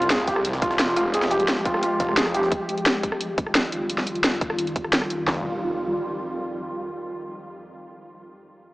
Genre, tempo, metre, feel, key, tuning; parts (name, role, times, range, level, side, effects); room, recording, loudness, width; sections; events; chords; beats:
dark technical drum and bass; 174 BPM; 4/4; straight; F minor; A4 = 440 Hz
swarming drone; sustained chords; 0.6-5.4 s; F2 to G4; -28 LUFS; equal; built-in reverb, sidechain pumping
felt-muted upright piano; arpeggios; 0.0-2.5 s; F4 to Ab4; -24 LUFS; equal; sidechain pumping, analog delay
snarling distorted saw bass; bass; 0.0-2.5, 5.3-5.4 s; F1 to C2; -29 LUFS; equal; overdrive, sidechain pumping
drum and bass drum kit; drums; 0.0-5.2 s; hi-hat, rim click, snare drum; -24 LUFS; equal; studio reverb
sub drop and impact; sound effects; 0.0-1.1, 5.3-6.7 s; -42 LUFS; equal
jungle sampler-style drum kit; drums; 0.1-2.5 s; hi-hat, snare drum; -34 LUFS; equal
drum and bass drum kit; drums; 0.3-5.4 s; handclaps, kick drum, snare drum, toms; -26 LUFS; equal; studio reverb
wet plate reverb, RT60 2.0 s; dreamy mix soaked in reverb, small speaker sound; -21 LUFS; side -20 dB against mid
0.0-5.3 A section; 5.3-6.7 B section
impact 0.0-1.1; filter sweep on synth drone 0.0-5.3
0.0 Fmadd9; 2.5 Ebadd9/F; 5.3 Fmadd9
0.10 0.45 0.79 | 1.14 1.48 1.83 2.17 | 2.52 2.86 3.21 3.55 | 3.90 4.24 4.59 4.93 | 5.28 5.62 5.96 6.31